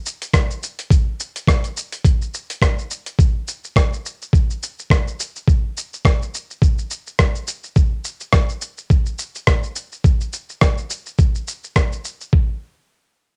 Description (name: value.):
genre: downtempo.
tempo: 105 BPM.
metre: 4/4.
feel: swing 56% on 16ths.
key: none.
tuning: none.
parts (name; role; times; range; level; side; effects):
dusty soul sampler-style drum kit; drums; 0.1-12.3 s; hi-hat, rim click, shaker; -25 LUFS; equal; none.
electronic kick drum; drums; 0.3-12.5 s; none; -18 LUFS; equal; none.
room: little or no reverb.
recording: home recording on cassette.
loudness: -20 LUFS.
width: mono.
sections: 0.0-12.3 A section; 12.3-13.4 B section.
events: none.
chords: none.